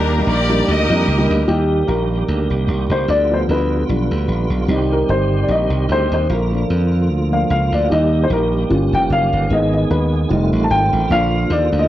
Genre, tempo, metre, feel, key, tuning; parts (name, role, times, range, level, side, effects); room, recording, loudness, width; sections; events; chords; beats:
uptempo gospel; 150 BPM; 4/4; swing 56% on 8ths; Eb major; A4 = 440 Hz
bright studio string section; melody; 0.0-1.4 s; D4 to Eb5; -20 LUFS; left 1 dB
dark upright piano; accompaniment; 0.0-11.9 s; Eb3 to A5; -18 LUFS; left 1 dB
tonewheel organ; sustained chords; 0.0-11.9 s; D3 to Ab4; -23 LUFS; right 4 dB; slow rotary speaker, overdrive, chorus vibrato
slap bass; bass; 0.0-11.9 s; F1 to F2; -18 LUFS; equal
moderate concert hall reverb, RT60 1.7 s, small room ambience; worn, warbling old tape, cassette tape, warbly pitch drift; -14 LUFS; side -13 dB against mid
0.0-1.5 A section; 1.5-11.9 B section
upright piano solo 1.5-11.9
0.0 Ebmaj7; 1.5 Eb; 3.1 G7/D; 4.7 Cm; 6.3 Bb; 7.9 Eb; 8.7 Eb7; 9.5 Abm; 10.3 F7; 11.1 Bb
0.27 0.67 1.07 | 1.48 1.88 2.28 2.68 | 3.08 3.48 3.89 4.29 | 4.69 5.09 5.49 5.89 | 6.29 6.70 7.10 7.50 | 7.90 8.30 8.70 9.10 | 9.50 9.90 10.30 10.70 | 11.10 11.50